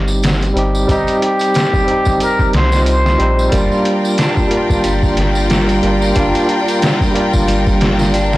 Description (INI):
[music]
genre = trip hop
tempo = 91 BPM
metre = 4/4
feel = swing 57% on 16ths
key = G minor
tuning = A4 = 440 Hz
[part]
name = barky tine electric piano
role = accompaniment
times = 0.0-8.4 s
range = G3 to C5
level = -17 LUFS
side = equal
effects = tremolo, tape echo
[part]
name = soft dub sub bass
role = bass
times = 0.0-8.4 s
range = G1 to C2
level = -17 LUFS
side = equal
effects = transformer saturation
[part]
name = tambourine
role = percussion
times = 0.1-8.4 s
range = none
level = -30 LUFS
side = equal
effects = none
[part]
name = trip hop sampler-style drum kit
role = drums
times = 0.2-8.4 s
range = hi-hat, kick drum, snare drum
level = -18 LUFS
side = equal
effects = overdrive, studio ambience
[part]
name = trumpet with plunger mute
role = melody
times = 0.9-3.5 s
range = Eb4 to C5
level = -18 LUFS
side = equal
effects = tape echo
[part]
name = clear studio string section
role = sustained chords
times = 3.5-8.4 s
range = F4 to G5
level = -19 LUFS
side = left 2 dB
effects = none
[part]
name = clean electric guitar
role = arpeggios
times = 3.5-8.4 s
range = G3 to D4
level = -20 LUFS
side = right 2 dB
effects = tape echo
[sound]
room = light reverb, small room reverb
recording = blown-out, overdriven recording, vinyl crackle, overdrive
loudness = -12 LUFS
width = side -17 dB against mid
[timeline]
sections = 0.0-8.4 A section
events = none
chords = 0.0 Cm/G; 3.5 Gm7